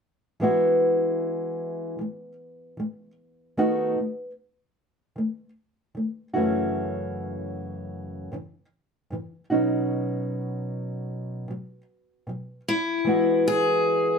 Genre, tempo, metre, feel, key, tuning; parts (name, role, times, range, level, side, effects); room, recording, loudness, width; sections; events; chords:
pop; 76 BPM; 4/4; swing 55% on 16ths; E major; A4 = 443 Hz
nylon-string guitar; accompaniment; 0.4-14.2 s; F#2 to F#4; -24 LUFS; equal
picked steel-string acoustic guitar; melody; 12.7-14.2 s; E4 to G#4; -22 LUFS; left 3 dB
moderate studio reverb, RT60 0.6 s; -24 LUFS; side -5 dB against mid
0.4-13.1 A section; 13.1-14.2 B section
0.4 Eadd9; 3.6 B7/D#; 6.3 F#m7; 9.5 Badd9; 13.1 Eadd9